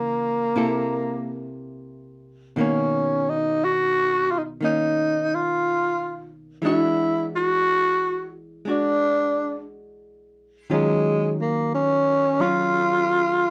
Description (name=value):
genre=jazz ballad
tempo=59 BPM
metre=4/4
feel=swing 69% on 8ths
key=unclear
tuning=A4 = 440 Hz
part: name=growling tenor saxophone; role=melody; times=0.0-13.5 s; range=Ab3 to F#4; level=-23 LUFS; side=equal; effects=slapback echo
part: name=archtop guitar, miked and amplified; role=accompaniment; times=0.0-13.5 s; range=B2 to A4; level=-30 LUFS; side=equal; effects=none
room=light reverb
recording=dry, close 1970s-style studio recording, faint mains hum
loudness=-22 LUFS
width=mono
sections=0.0-13.5 A section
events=none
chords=0.0 Dbmadd9; 0.6 C6; 2.6 Bmaj9; 6.6 E9; 10.7 Ebm9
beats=0.55 1.56 | 2.58 3.59 4.61 5.62 | 6.63 7.65 8.66 9.67 | 10.68 11.70 12.71